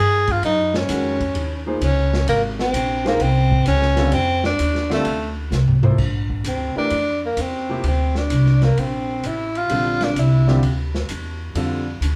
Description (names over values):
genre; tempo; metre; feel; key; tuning
modal jazz; 129 BPM; 4/4; swing 68% on 8ths; Gb lydian, Bb lydian from 6.0 s; A4 = 440 Hz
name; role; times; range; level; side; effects
warm tenor saxophone; melody; 0.0-10.6 s; A3 to Ab4; -23 LUFS; equal; plate reverb
upright bass; bass; 0.0-12.2 s; Ab1 to G2; -23 LUFS; equal; none
open jazz drum kit; drums; 0.3-12.2 s; crash cymbal, hi-hat, kick drum, ride cymbal, snare drum, toms; -29 LUFS; equal; none
warm concert grand piano; accompaniment; 0.9-11.8 s; C3 to C5; -27 LUFS; equal; none
room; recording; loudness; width
wet studio reverb, RT60 0.5 s; heard from further back in the room; -20 LUFS; mono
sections
0.0-6.0 A section; 6.0-12.2 B section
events
drum fill 5.5-6.0; tenor saxophone solo 6.0-12.2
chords
0.0 Gb69; 2.3 Db; 4.1 F13; 6.0 Bbmaj9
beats
| 0.43 0.89 1.35 1.82 | 2.28 2.74 3.21 3.67 | 4.13 4.59 5.06 5.52 | 5.99 6.45 6.91 7.38 | 7.84 8.30 8.77 9.23 | 9.70 10.16 10.62 11.09 | 11.55 12.02